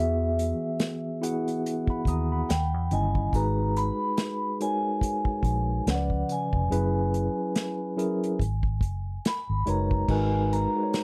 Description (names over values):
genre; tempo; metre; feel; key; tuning
R&B, neo-soul; 71 BPM; 4/4; swing 58% on 16ths; G# minor; A4 = 440 Hz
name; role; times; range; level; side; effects
vibraphone with soft mallets; melody; 0.0-11.0 s; E5 to B5; -34 LUFS; equal; none
mellow tine electric piano; accompaniment; 0.0-11.0 s; C#3 to D#6; -31 LUFS; equal; none
vintage muted fingered electric bass; bass; 0.0-10.7 s; E#1 to E2; -30 LUFS; equal; none
unplugged drum kit; drums; 0.4-11.0 s; crash cymbal, hi-hat, kick drum, snare drum; -31 LUFS; equal; none
room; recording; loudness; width
little or no reverb; dry, close 1970s-style studio recording; -27 LUFS; mono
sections
0.0-10.1 A section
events
none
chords
0.0 Emaj9; 2.5 D#7b9; 3.3 G#m9; 5.9 C#7b9; 6.7 F#9sus4; 8.4 G#m11; 10.1 G#m9